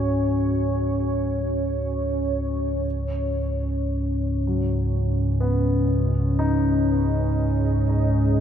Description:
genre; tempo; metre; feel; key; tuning
ambient; free time; none; none; unclear; A4 = 441 Hz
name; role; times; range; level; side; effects
deep dark ambient pad; sustained chords; 0.0-8.4 s; C#4 to G#5; -25 LUFS; equal; chorus, built-in reverb
warm grand piano; arpeggios; 0.0-8.4 s; F#3 to D#4; -29 LUFS; left 1 dB; ping-pong delay
deep rumbling drone; drone; 0.0-8.4 s; C#2 to G#2; -23 LUFS; equal; built-in reverb, wide subtle chorus
room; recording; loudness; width
wet cathedral reverb, RT60 5.4 s; dark, warm production; -21 LUFS; side -9 dB against mid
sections
0.0-2.9 A section; 2.9-8.4 B section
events
none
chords
0.0 F#5/C#; 2.9 C#5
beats
free time

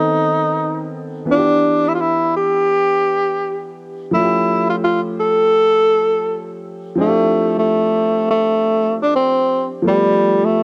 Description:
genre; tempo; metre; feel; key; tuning
hip hop; 84 BPM; 4/4; swing 62% on 16ths; unclear; A4 = 442 Hz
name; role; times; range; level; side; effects
breathy tenor saxophone; melody; 0.0-10.6 s; G3 to A4; -17 LUFS; equal; none
warm upright piano; accompaniment; 0.0-10.6 s; D#3 to A4; -24 LUFS; equal; none
room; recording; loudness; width
light reverb; worn, warbling old tape, cassette tape, warbly pitch drift; -16 LUFS; mono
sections
0.0-10.6 A section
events
none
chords
0.0 B7b9; 1.3 Em7; 4.1 A7b13; 7.0 Dm11; 9.9 G9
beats
0.57 | 1.28 2.00 2.71 3.42 | 4.14 4.85 5.57 6.28 | 7.00 7.71 8.42 9.14 | 9.85 10.57

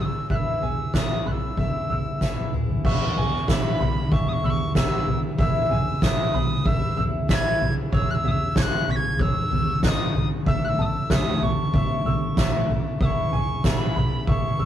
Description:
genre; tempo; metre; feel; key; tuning
indie folk with a building arrangement; 94 BPM; 4/4; straight; E major; A4 = 440 Hz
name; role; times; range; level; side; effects
bright tin whistle; melody; 0.0-14.7 s; B5 to B6; -29 LUFS; equal; none
picked twelve-string acoustic guitar; accompaniment; 0.0-14.7 s; E2 to A4; -31 LUFS; left 2 dB; none
bright upright piano; arpeggios; 0.0-14.7 s; D#4 to E6; -34 LUFS; right 2 dB; none
mellow fretless electric bass; bass; 0.0-14.7 s; E1 to E2; -32 LUFS; equal; none
soft-mallet drum kit; drums; 0.3-14.7 s; crash cymbal, kick drum, snare drum, toms; -22 LUFS; equal; none
tambourine; percussion; 0.9-13.8 s; none; -46 LUFS; right 6 dB; none
room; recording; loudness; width
light reverb; rough rehearsal-room recording; -20 LUFS; side -10 dB against mid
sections
0.0-2.9 A section; 2.9-14.7 A section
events
drum fill 2.2-2.9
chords
0.3 E; 7.9 C#madd9; 10.5 A; 13.0 E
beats
| 0.30 0.94 1.58 2.21 | 2.85 3.49 4.12 4.76 | 5.39 6.03 6.66 7.29 | 7.93 8.57 9.20 9.84 | 10.47 11.11 11.74 12.38 | 13.01 13.64 14.28

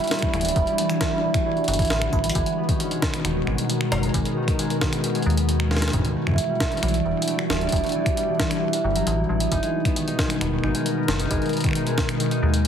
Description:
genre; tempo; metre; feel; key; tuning
IDM; 134 BPM; 4/4; straight; unclear; A4 = 439 Hz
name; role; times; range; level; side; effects
glassy FM pad; sustained chords; 0.0-12.7 s; B2 to A#4; -26 LUFS; left 1 dB; ensemble chorus, built-in reverb
concert harp; arpeggios; 0.0-12.7 s; B2 to D#4; -26 LUFS; right 2 dB; ping-pong delay
jungle sampler-style drum kit; drums; 0.0-12.7 s; finger snaps, hi-hat, snare drum; -28 LUFS; equal; ping-pong delay
pulsing gated texture; texture; 0.0-2.4 s; B5; -36 LUFS; right 6 dB; chorus, built-in reverb
electronic kick drum; drums; 0.2-12.1 s; none; -25 LUFS; equal; overdrive
metallic FM bass; bass; 0.3-12.7 s; D1 to D#2; -25 LUFS; equal; none
room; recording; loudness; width
light reverb, digital ambience; heavily compressed radio sound; -20 LUFS; side -8 dB against mid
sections
0.0-2.4 A section; 2.4-12.7 A section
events
drum fill 2.1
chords
0.0 Em9; 2.4 G#m9; 5.9 Em9; 9.5 G#m9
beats
0.11 | 0.56 1.01 1.46 1.90 | 2.35 2.80 3.25 3.69 | 4.14 4.59 5.04 5.49 | 5.93 6.38 6.83 7.28 | 7.72 8.17 8.62 9.07 | 9.52 9.96 10.41 10.86 | 11.31 11.76 12.20 12.65

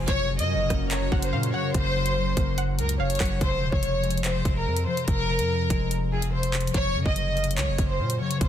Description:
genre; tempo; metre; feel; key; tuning
hip hop, drill; 144 BPM; 4/4; half-time; F phrygian; A4 = 439 Hz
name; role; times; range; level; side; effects
glassy wavetable pluck; second line; 0.0-3.4 s; F5 to Bb5; -37 LUFS; right 2 dB; chorus, ping-pong delay
concert harp; accompaniment; 0.0-8.5 s; F2 to Bb3; -29 LUFS; left 4 dB; none
airy breathy pad; sustained chords; 0.0-3.4 s; Gb3 to Bb4; -35 LUFS; right 2 dB; chorus
long sustained 808-style bass; bass; 0.0-8.5 s; Eb1 to Bb2; -28 LUFS; right 1 dB; none
warm studio violin section; melody; 0.1-8.5 s; Ab4 to Eb5; -28 LUFS; equal; ping-pong delay
drill drum kit; drums; 0.1-8.5 s; handclaps, hi-hat, kick drum, rim click; -27 LUFS; equal; none
room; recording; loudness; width
little or no reverb; dense, heavily limited modern master; -22 LUFS; side -10 dB against mid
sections
0.0-3.4 A section; 3.4-8.5 B section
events
none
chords
0.1 Gb; 3.4 Fm; 6.7 Gb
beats
| 0.08 0.49 0.91 1.33 | 1.74 2.16 2.58 2.99 | 3.41 3.83 4.24 4.66 | 5.08 5.49 5.91 6.33 | 6.74 7.16 7.58 7.99 | 8.41

